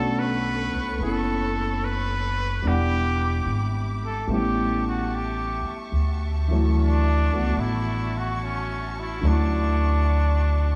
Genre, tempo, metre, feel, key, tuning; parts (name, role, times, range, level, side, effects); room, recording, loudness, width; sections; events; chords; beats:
jazz ballad; 73 BPM; 4/4; swing 69% on 8ths; D major; A4 = 440 Hz
trumpet with straight mute; melody; 0.0-10.8 s; C#4 to B4; -31 LUFS; equal; analog delay
warm baby grand piano; accompaniment; 0.0-10.8 s; D3 to F#5; -30 LUFS; equal
warm studio string section; sustained chords; 0.0-10.8 s; F#4 to D6; -38 LUFS; equal
upright bass; bass; 0.0-10.8 s; E1 to D2; -26 LUFS; equal
moderate plate reverb, RT60 2.5 s; dreamy mix soaked in reverb; -24 LUFS; mono
0.0-10.8 A section
0.0 Bm9; 2.6 Em7; 4.3 A7; 5.9 Dmaj9
0.16 0.99 1.82 | 2.64 3.46 4.28 5.11 | 5.93 6.75 7.58 8.40 | 9.23 10.05